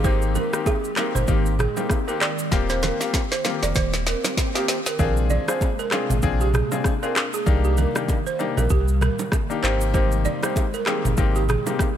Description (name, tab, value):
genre	afrobeats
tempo	97 BPM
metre	4/4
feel	swing 58% on 16ths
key	Bb mixolydian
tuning	A4 = 441 Hz
part	clear baby grand piano	accompaniment	0.0-11.9 s	Bb3 to Ab4	-27 LUFS	left 8 dB	none
part	hollow soft pad	sustained chords	0.0-12.0 s	C3 to G4	-31 LUFS	equal	ensemble chorus
part	balafon	riff	0.0-11.6 s	G4 to D5	-28 LUFS	right 6 dB	ping-pong delay
part	warm sub bass	bass	0.0-11.6 s	Eb1 to C2	-22 LUFS	equal	none
part	afro-pop drum kit	drums	0.0-12.0 s	handclaps, kick drum, rim click, shaker, snare drum, toms	-24 LUFS	equal	none
part	congas and bongos	percussion	0.0-12.0 s	none	-32 LUFS	right 6 dB	none
part	swell	sound effects	3.2-5.0 s	none	-35 LUFS	right 1 dB	none
room	digital ambience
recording	none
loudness	-19 LUFS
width	side -10 dB against mid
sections	0.0-5.0 A section; 5.0-12.0 B section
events	drum fill 2.5-5.0; swell 3.2-5.0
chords	0.0 Abmaj7; 2.5 Eb6; 5.0 Bb9; 7.5 Cm7; 9.6 Abmaj7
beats	| 0.04 0.66 1.28 1.90 | 2.52 3.14 3.76 4.37 | 4.99 5.61 6.23 6.85 | 7.47 8.09 8.70 9.32 | 9.94 10.56 11.18 11.80